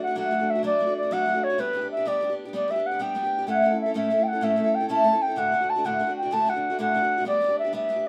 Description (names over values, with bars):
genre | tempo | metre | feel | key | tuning
celtic folk, Celtic slide | 127 BPM (dotted quarters) | 12/8 | straight | unclear | A4 = 441 Hz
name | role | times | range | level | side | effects
bright reedy baroque flute | melody | 0.0-8.1 s | B4 to A5 | -26 LUFS | equal | none
picked steel-string acoustic guitar | accompaniment | 0.0-8.1 s | D2 to A4 | -30 LUFS | equal | none
room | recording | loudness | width
moderate studio reverb, RT60 0.5 s | none | -24 LUFS | mono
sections
0.0-8.1 A section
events
none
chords
0.0 D/F#; 1.6 G; 3.5 A; 5.4 D; 7.3 G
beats
0.16 0.64 1.11 | 1.58 2.06 2.53 3.00 | 3.48 3.95 4.42 4.90 | 5.37 5.84 6.32 6.79 | 7.26 7.74